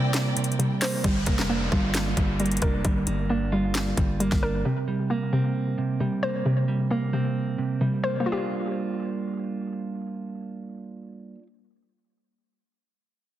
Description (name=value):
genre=hip hop, trap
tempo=133 BPM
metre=4/4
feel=half-time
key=G minor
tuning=A4 = 440 Hz
part: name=mellow electric guitar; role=accompaniment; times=0.0-11.5 s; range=C3 to F4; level=-28 LUFS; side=right 3 dB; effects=low-pass filter
part: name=warm studio string section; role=sustained chords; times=0.0-1.0 s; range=E4 to G5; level=-33 LUFS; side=equal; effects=none
part: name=hollow square pluck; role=arpeggios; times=0.0-11.5 s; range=C3 to C5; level=-27 LUFS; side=left 1 dB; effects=chorus, low-pass filter, tape echo
part: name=trap drum kit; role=drums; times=0.1-4.4 s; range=handclaps, hi-hat, kick drum, snare drum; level=-27 LUFS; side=equal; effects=none
part: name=growling 808-style bass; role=bass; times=1.0-4.6 s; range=F1 to G1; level=-29 LUFS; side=equal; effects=none
part: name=downlifter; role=sound effects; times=1.0-4.7 s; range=none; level=-35 LUFS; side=equal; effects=none
room=moderate lush hall reverb, RT60 1.8 s, digital ambience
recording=dense, heavily limited modern master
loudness=-23 LUFS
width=side -12 dB against mid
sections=0.0-1.0 A section; 1.0-8.3 B section; 8.3-11.9 C section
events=break 0.0-1.0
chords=0.0 C7; 1.0 Gm7; 4.7 C5; 8.3 Gm7